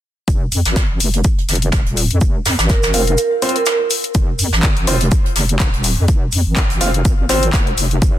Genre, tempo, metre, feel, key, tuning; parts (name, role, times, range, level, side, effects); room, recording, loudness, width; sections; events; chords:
bass house; 124 BPM; 4/4; swing 56% on 16ths; F minor; A4 = 440 Hz
wobble bass; bass; 0.3-8.2 s; Eb1 to F2; -18 LUFS; equal; chorus, overdrive, sidechain pumping
electronic kick drum; drums; 0.3-8.1 s; -16 LUFS; equal; overdrive
house drum kit; drums; 0.3-8.1 s; handclaps, hi-hat; -21 LUFS; left 4 dB; overdrive
soft brush drum kit; drums; 0.3-8.2 s; hi-hat, shaker, snare drum; -23 LUFS; right 2 dB; high-pass filter on hats, soft clipping on snare, high-pass filter on snare, high-pass filter on perc, high-pass filter on room
vibraphone with medium mallets; melody; 2.7-3.8 s; Bb4; -19 LUFS; right 4 dB; ping-pong delay
warm baby grand piano; stabs; 2.9-7.4 s; C4 to F5; -22 LUFS; equal; sidechain pumping, ping-pong delay
studio reverb; dense, heavily limited modern master; -13 LUFS; side -12 dB against mid
0.3-4.1 A section; 4.1-8.2 B section
0.3 F5